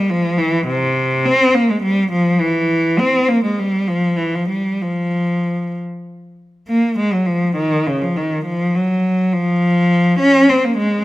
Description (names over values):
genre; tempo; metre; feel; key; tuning
classical, baroque-style suite movement for unaccompanied cello; 68 BPM (dotted quarters); 6/8; rubato; F minor; A4 = 440 Hz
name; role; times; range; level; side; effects
rich cello; solo; 0.0-11.0 s; C3 to Db4; -14 LUFS; equal; none
room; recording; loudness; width
moderate recital hall reverb, RT60 1.6 s; close, detailed microphones; -14 LUFS; side -17 dB against mid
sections
0.0-6.7 A section; 6.7-11.0 A section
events
none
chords
none